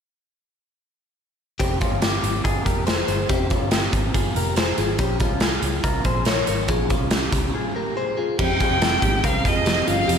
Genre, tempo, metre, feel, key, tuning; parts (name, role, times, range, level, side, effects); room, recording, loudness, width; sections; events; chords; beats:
jangly indie pop; 141 BPM; 4/4; straight; F minor; A4 = 439 Hz
direct-recorded clean electric guitar; arpeggios; 1.6-10.2 s; C4 to Db5; -25 LUFS; left 3 dB; phaser, tape echo
vintage muted fingered electric bass; bass; 1.6-10.2 s; F1 to Db2; -26 LUFS; equal
raw garage drum kit; drums; 1.6-10.2 s; crash cymbal, hi-hat, kick drum, snare drum; -22 LUFS; equal
warm violin; melody; 8.4-10.2 s; Eb5 to G5; -22 LUFS; left 1 dB
picked steel-string acoustic guitar; accompaniment; 8.4-10.2 s; F2 to G4; -27 LUFS; right 6 dB; slapback echo
moderate scoring stage reverb, RT60 1.9 s; big arena sound; -19 LUFS; side -7 dB against mid
1.6-8.4 A section; 8.4-10.2 B section
break 7.5-8.4
1.6 Fmadd9; 5.0 Bbm7; 8.4 Fmadd9
| 1.60 2.02 2.45 2.87 | 3.30 3.72 4.15 4.57 | 4.99 5.42 5.84 6.27 | 6.69 7.12 7.54 7.96 | 8.39 8.81 9.24 9.66 | 10.09